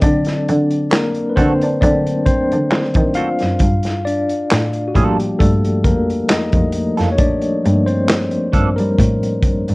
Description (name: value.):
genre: R&B, neo-soul.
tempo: 67 BPM.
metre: 4/4.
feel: swing 53% on 16ths.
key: G minor.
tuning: A4 = 440 Hz.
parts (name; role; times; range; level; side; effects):
tine electric piano; accompaniment; 0.0-9.7 s; F3 to F5; -18 LUFS; left 1 dB; medium tremolo.
dark cello; bass; 0.0-9.7 s; F2 to D4; -19 LUFS; equal; none.
crunchy breakbeat drum kit; drums; 0.0-9.7 s; handclaps, hi-hat, kick drum, snare drum; -17 LUFS; equal; none.
clean electric guitar; second line; 0.9-8.7 s; F3 to A4; -23 LUFS; right 4 dB; wah.
room: light reverb.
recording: worn, warbling old tape, cassette tape, warbly pitch drift.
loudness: -14 LUFS.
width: side -23 dB against mid.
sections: 0.0-9.7 A section.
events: tine electric piano solo 0.0-9.7.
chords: 0.0 D7; 3.6 Gm9.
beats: | 0.02 0.92 1.81 2.71 | 3.60 4.50 5.39 6.29 | 7.18 8.08 8.97.